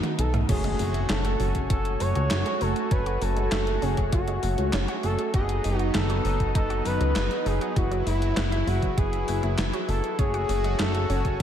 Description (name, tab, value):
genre	synthwave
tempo	99 BPM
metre	4/4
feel	straight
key	F# dorian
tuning	A4 = 440 Hz
part	expressive portamento lead	melody	0.0-11.4 s	E4 to C#5	-30 LUFS	equal	chorus, diffuse ambient delay
part	brassy analog pad	sustained chords	0.0-11.4 s	F#3 to F#4	-32 LUFS	right 1 dB	chorus, sidechain pumping
part	analog pluck	arpeggios	0.0-11.4 s	D#3 to F#4	-37 LUFS	right 2 dB	none
part	gated 80s digital drum machine	drums	0.0-11.4 s	crash cymbal, handclaps, hi-hat, snare drum, toms	-32 LUFS	equal	gated reverb, gated reverb snare, overdrive
part	chorused synth bass	bass	0.2-11.4 s	F#1 to C#2	-26 LUFS	equal	none
part	analog synth brass	stabs	0.5-11.4 s	A3 to G#5	-34 LUFS	left 2 dB	chorus, diffuse ambient delay
part	electronic kick drum	drums	0.5-11.4 s	none	-26 LUFS	equal	overdrive
part	impact	sound effects	0.5-2.9 s	none	-36 LUFS	equal	none
room	moderate lush hall reverb, RT60 2.5 s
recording	dreamy mix soaked in reverb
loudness	-23 LUFS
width	side -9 dB against mid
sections	0.5-11.4 A section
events	drum fill 0.0-0.5; impact 0.5-2.9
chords	0.5 F#madd9; 5.3 B/F#; 7.8 Eadd9/F#; 10.2 F#madd9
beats	| 0.49 1.10 1.70 2.31 | 2.92 3.52 4.13 4.73 | 5.34 5.95 6.55 7.16 | 7.76 8.37 8.97 9.58 | 10.19 10.79 11.40